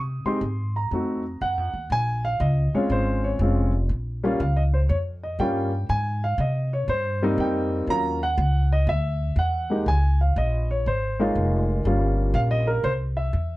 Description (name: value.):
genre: jazz piano trio.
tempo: 121 BPM.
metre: 4/4.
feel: swing 66% on 8ths.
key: unclear.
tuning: A4 = 441 Hz.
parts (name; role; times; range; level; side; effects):
upright bass; bass; 0.0-13.6 s; F1 to C3; -24 LUFS; equal; none.
warm concert grand piano; melody; 0.3-13.6 s; Gb3 to C6; -25 LUFS; equal; none.
room: light reverb.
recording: dark, warm production.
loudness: -21 LUFS.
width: side -18 dB against mid.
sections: 0.0-1.9 A section; 1.9-13.6 B section.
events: none.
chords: 0.0 Fm (rootless); 0.9 F7b9; 1.9 Bbm7; 3.9 Bbm6; 5.9 Abmaj7; 7.9 Ebm7; 8.9 Dadd9; 9.9 Db69; 11.9 Gm7b5; 12.9 C.